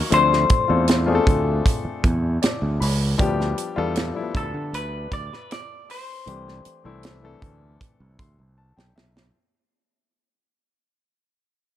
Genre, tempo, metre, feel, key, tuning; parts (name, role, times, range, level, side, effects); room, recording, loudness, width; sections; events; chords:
lush 1970s-style soul; 78 BPM; 4/4; straight; A4 = 440 Hz
warm grand piano; accompaniment; 0.0-9.4 s; E3 to C6; -25 LUFS; left 5 dB
semi-hollow electric guitar; melody; 0.1-8.9 s; A4 to D5; -24 LUFS; left 5 dB; spring reverb
overdriven fingered electric bass; bass; 0.1-9.3 s; B1 to D3; -23 LUFS; right 1 dB
tight funk drum kit; drums; 0.1-9.3 s; hi-hat, kick drum, snare drum; -23 LUFS; right 1 dB
studio ambience; -19 LUFS; side -12 dB against mid
0.0-9.3 A section
fade-out 0.0-9.3; grand piano fill 2.0-3.2, 7.8-9.3; drum fill 8.6-9.3
0.1 Dm7; 3.2 G7/D; 6.3 C69